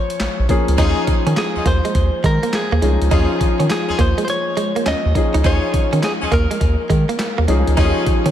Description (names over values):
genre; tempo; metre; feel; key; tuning
R&B, new jack swing; 103 BPM; 4/4; swing 66% on 16ths; unclear; A4 = 440 Hz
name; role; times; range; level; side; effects
direct-recorded clean electric guitar; melody; 0.0-7.5 s; Ab4 to Eb5; -24 LUFS; equal; ping-pong delay
warm concert grand piano; accompaniment; 0.0-8.3 s; F3 to Ab4; -22 LUFS; left 3 dB; none
dusty soul sampler-style drum kit; drums; 0.1-8.3 s; handclaps, hi-hat, kick drum, snare drum; -21 LUFS; equal; none
round analog bass; bass; 0.2-8.3 s; Bb1 to Eb3; -18 LUFS; equal; none
direct-recorded clean electric guitar; riff; 0.8-8.3 s; Ab3 to Eb4; -24 LUFS; right 5 dB; wide subtle chorus
clear horn section; stabs; 0.8-8.1 s; Db4 to Ab4; -28 LUFS; left 2 dB; ping-pong delay
room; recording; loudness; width
moderate church reverb, RT60 3.1 s; dreamy mix soaked in reverb; -15 LUFS; side -10 dB against mid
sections
0.0-8.3 A section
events
none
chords
0.0 Bbm7; 0.8 Eb9sus4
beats
0.20 | 0.78 1.37 1.95 2.53 | 3.11 3.70 4.28 4.86 | 5.44 6.03 6.61 7.19 | 7.77